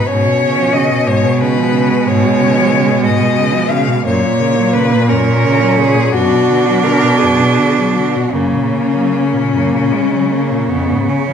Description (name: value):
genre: classical, lyrical piece for cello ensemble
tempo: 50-62 BPM (dotted quarters)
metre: 12/8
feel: rubato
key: F# major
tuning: A4 = 440 Hz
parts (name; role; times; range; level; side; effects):
- rich cello; melody; 0.0-11.3 s; C#4 to E#5; -16 LUFS; left 6 dB; none
- clear cello; second line; 0.0-11.3 s; G#3 to D4; -16 LUFS; right 6 dB; none
- clear cello; accompaniment; 0.0-11.3 s; E#2 to F#3; -18 LUFS; left 2 dB; none
- rich cello; bass; 0.0-11.3 s; A#2 to C#3; -17 LUFS; right 2 dB; none
room: wet recital hall reverb, RT60 1.4 s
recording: none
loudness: -11 LUFS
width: side -7 dB against mid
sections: 0.0-11.3 A section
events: none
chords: 0.1 C#7/G#; 4.1 F#; 6.1 Bm/F#; 8.3 F#; 10.7 C#/E#